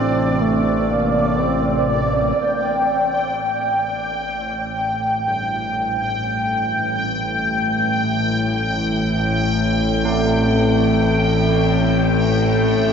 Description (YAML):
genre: dark ambient drone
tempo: free time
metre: none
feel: none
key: unclear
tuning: A4 = 441 Hz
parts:
  - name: mellow duduk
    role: melody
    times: 0.0-2.1 s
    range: A3 to C4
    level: -24 LUFS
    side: right 1 dB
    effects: shimmer reverb, diffuse ambient delay
  - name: bowed-like drone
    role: drone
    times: 0.0-12.9 s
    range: A1 to C3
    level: -20 LUFS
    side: left 1 dB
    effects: built-in reverb
  - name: bubbling stepped-filter texture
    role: texture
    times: 0.0-12.9 s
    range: D5 to G5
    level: -21 LUFS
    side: equal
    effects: chorus, built-in reverb, shimmer reverb
  - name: carillon bells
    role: arpeggios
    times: 5.3-12.9 s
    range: G2 to A3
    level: -24 LUFS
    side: right 2 dB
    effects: diffuse ambient delay
room: wet huge ambient reverb, RT60 6.9 s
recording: worn, warbling old tape, cassette tape, warbly pitch drift, nothing above 7.9 kHz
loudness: -17 LUFS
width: side -7 dB against mid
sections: 0.0-2.4 A section; 2.4-12.9 B section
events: fade-in on synth drone 2.4-12.9; fade-in on church bells 2.4-12.9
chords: 0.0 Am; 2.4 Gsus2